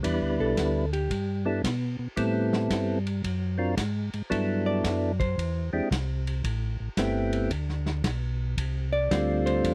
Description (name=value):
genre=soul jazz organ trio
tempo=112 BPM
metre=4/4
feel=swing 66% on 8ths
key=G major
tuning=A4 = 440 Hz
part: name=percussive tonewheel organ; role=melody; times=0.0-9.7 s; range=F#3 to B4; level=-29 LUFS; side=equal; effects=slow rotary speaker
part: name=tonewheel organ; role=bass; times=0.0-9.7 s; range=G1 to B2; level=-31 LUFS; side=equal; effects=chorus vibrato, slow rotary speaker
part: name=vintage drum kit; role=drums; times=0.0-9.7 s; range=hi-hat, kick drum, ride cymbal, snare drum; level=-36 LUFS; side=equal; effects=none
part: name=hollow-body jazz guitar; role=accompaniment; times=0.4-1.4, 4.7-5.7, 8.9-9.7 s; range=G4 to D5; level=-33 LUFS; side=equal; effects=none
room=light reverb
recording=dry, close 1970s-style studio recording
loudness=-28 LUFS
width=mono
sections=0.0-9.7 A section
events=hollow-body jazz guitar solo 0.0-9.7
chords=0.0 Em7; 2.2 Am9; 3.2 D7alt; 4.3 Gmaj13; 5.4 E7alt; 6.4 Am7; 7.5 Bm; 8.6 G9sus4